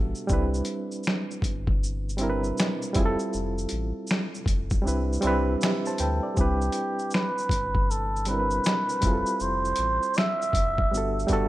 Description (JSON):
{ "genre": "lo-fi hip hop", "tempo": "79 BPM", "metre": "4/4", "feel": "swing 64% on 16ths", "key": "C major", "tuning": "A4 = 443 Hz", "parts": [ { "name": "barky reed electric piano", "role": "accompaniment", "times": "0.0-11.5 s", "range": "G3 to A5", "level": "-29 LUFS", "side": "right 1 dB", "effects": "overdrive, fast tremolo, low-pass filter" }, { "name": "sub bass with octave", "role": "bass", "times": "0.0-11.5 s", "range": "F1 to D2", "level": "-29 LUFS", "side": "equal", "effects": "none" }, { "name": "dusty soul sampler-style drum kit", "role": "drums", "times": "0.1-11.5 s", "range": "finger snaps, hi-hat, kick drum, shaker, snare drum", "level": "-27 LUFS", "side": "equal", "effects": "none" }, { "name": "trumpet with cup mute", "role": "melody", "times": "6.0-11.5 s", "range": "G4 to E5", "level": "-27 LUFS", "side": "right 1 dB", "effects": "low-pass filter" } ], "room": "moderate plate reverb, RT60 1.9 s, digital ambience", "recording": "rough home demo mix", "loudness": "-23 LUFS", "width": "side -16 dB against mid", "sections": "0.0-6.4 A section; 6.4-11.5 A section", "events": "kick muted 4.9-6.4", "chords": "0.3 Cmaj9; 3.0 Fmaj9; 4.9 Cmaj9; 9.0 Fmaj9; 10.9 Gmaj9", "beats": "| 0.29 1.05 1.81 2.57 | 3.33 4.09 4.85 5.61 | 6.37 7.13 7.89 8.65 | 9.41 10.17 10.93" }